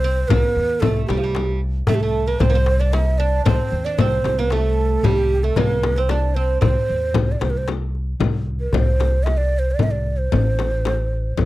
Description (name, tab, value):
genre	Arabic maqam ensemble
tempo	114 BPM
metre	3/4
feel	straight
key	C maqam rast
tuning	A4 = 439 Hz
part	breathy mellow ney	melody	0.0-11.5 s	G4 to E5-48c	-23 LUFS	right 3 dB	none
part	oud	second line	0.0-7.3 s	F3 to E4-50c	-27 LUFS	right 6 dB	none
part	upright bass	bass	0.0-11.5 s	A1 to E2-50c	-21 LUFS	equal	none
part	darbuka	percussion	0.0-11.5 s	none	-23 LUFS	left 1 dB	none
part	frame drum	percussion	0.3-11.5 s	none	-24 LUFS	left 6 dB	none
room	little or no reverb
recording	dry, close 1970s-style studio recording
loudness	-17 LUFS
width	side -16 dB against mid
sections	0.0-8.2 A section; 8.2-11.5 B section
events	none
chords	none